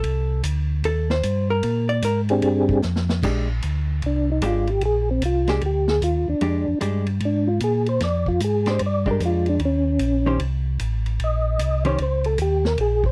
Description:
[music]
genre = soul jazz organ trio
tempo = 151 BPM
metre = 4/4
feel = swing 65% on 8ths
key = Bb major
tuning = A4 = 440 Hz
[part]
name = vintage hollow-body jazz guitar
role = accompaniment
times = 0.0-12.0 s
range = Eb3 to D5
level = -27 LUFS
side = equal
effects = none
[part]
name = mellow tonewheel organ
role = bass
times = 0.0-13.1 s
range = Ab1 to Bb2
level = -25 LUFS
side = equal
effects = slow rotary speaker
[part]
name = vintage drum kit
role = drums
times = 0.0-13.1 s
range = crash cymbal, hi-hat, kick drum, ride cymbal, snare drum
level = -34 LUFS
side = equal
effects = none
[part]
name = percussive tonewheel organ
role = melody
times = 2.3-13.1 s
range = C4 to Eb5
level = -24 LUFS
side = equal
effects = slow rotary speaker, chorus vibrato
[sound]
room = little or no reverb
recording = dry, close 1970s-style studio recording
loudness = -22 LUFS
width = mono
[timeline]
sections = 0.0-3.2 A section; 3.2-13.1 A section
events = hollow-body jazz guitar solo 0.0-3.2; drum fill 2.8-3.2; tonewheel organ solo 3.2-13.1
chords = 0.0 F13 (rootless); 1.6 Bb13; 9.6 Eb5

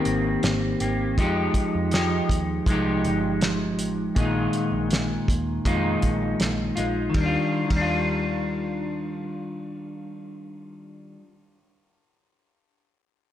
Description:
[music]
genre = indie pop, bedroom pop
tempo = 80 BPM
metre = 4/4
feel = straight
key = Eb major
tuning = A4 = 443 Hz
[part]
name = clean electric guitar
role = accompaniment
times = 0.0-11.3 s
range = Bb2 to G4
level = -24 LUFS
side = left 1 dB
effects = lush chorus, vibrato effect
[part]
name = vintage muted picked electric bass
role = bass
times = 0.1-11.2 s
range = G1 to F2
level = -30 LUFS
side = right 1 dB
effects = none
[part]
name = cloth-damped thuddy drum kit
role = drums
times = 0.1-7.9 s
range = hi-hat, kick drum, ride cymbal, snare drum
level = -26 LUFS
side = equal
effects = vintage 12-bit sampler grit
[sound]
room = moderate lush hall reverb, RT60 1.6 s, studio reverb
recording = dreamy mix soaked in reverb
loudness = -22 LUFS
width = side -11 dB against mid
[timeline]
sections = 0.0-7.1 A section; 7.1-10.1 B section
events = none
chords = 0.0 Abmaj9; 1.2 Fm9; 4.2 Bb7sus4; 7.1 Ebmaj9

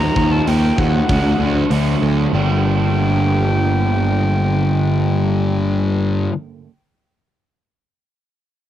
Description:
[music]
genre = rock, shoegaze and dream pop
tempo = 97 BPM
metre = 4/4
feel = straight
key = G minor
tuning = A4 = 437 Hz
[part]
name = breathy bright silver concert flute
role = melody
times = 0.0-5.6 s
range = F#5 to Bb5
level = -25 LUFS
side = left 1 dB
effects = cassette tape, tape echo
[part]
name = crunchy overdriven guitar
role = riff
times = 0.0-6.3 s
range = G2 to Eb4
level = -22 LUFS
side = right 8 dB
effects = reverse reverb, cassette tape
[part]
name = fuzz guitar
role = riff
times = 0.0-6.3 s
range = G2 to Eb4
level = -21 LUFS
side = left 7 dB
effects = distortion, analog chorus, cassette tape
[part]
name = fuzz picked electric bass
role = bass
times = 0.0-6.3 s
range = G1 to Eb2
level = -18 LUFS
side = equal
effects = overdrive
[part]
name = huge arena drum kit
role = drums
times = 0.2-1.9 s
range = hi-hat, kick drum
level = -25 LUFS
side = equal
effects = none
[sound]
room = little or no reverb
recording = home recording on cassette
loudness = -14 LUFS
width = side -11 dB against mid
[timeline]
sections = 0.0-2.3 A section; 2.3-4.8 B section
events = none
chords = 0.0 Ebsus2; 1.1 D; 2.3 Gm

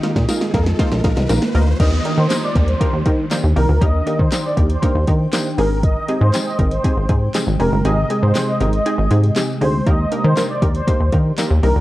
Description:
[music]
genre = dance-pop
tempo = 119 BPM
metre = 4/4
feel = straight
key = Eb major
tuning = A4 = 442 Hz
[part]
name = clear grand piano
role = melody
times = 0.0-1.2 s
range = Eb4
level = -32 LUFS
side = left 1 dB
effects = cassette tape, tape echo
[part]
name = punchy chord stab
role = accompaniment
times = 0.0-11.8 s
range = Ab3 to C5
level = -24 LUFS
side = equal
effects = chorus, sidechain pumping, cassette tape
[part]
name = ethereal airy pad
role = sustained chords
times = 0.0-11.8 s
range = C3 to G5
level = -26 LUFS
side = right 1 dB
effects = ensemble chorus, built-in reverb, phaser, sidechain pumping, cassette tape
[part]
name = smooth R&B drum kit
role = drums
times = 0.0-11.7 s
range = crash cymbal, handclaps, hi-hat, kick drum, snare drum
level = -20 LUFS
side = equal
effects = cassette tape
[part]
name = riser and downlifter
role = sound effects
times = 0.0-5.8 s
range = none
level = -29 LUFS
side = equal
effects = none
[part]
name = plucky analog bass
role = bass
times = 0.2-11.8 s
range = F1 to Eb3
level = -16 LUFS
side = equal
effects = sidechain pumping
[part]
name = tambourine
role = percussion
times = 0.3-11.5 s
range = none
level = -30 LUFS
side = left 5 dB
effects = none
[part]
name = filtered supersaw swell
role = melody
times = 1.8-11.7 s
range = Bb4 to Eb5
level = -23 LUFS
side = equal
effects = sidechain pumping, cassette tape, tape echo
[sound]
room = digital ambience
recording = home recording on cassette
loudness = -14 LUFS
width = side -16 dB against mid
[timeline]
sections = 0.0-1.8 A section; 1.8-11.8 B section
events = build-up 0.0-1.8; drum fill 0.0-1.8; riser 0.0-1.8; drop 1.8-11.8; kick muted 7.8-9.9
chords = 0.0 Bbsus4; 1.8 Ebmaj7; 5.6 Abmaj7; 9.9 Ebmaj7

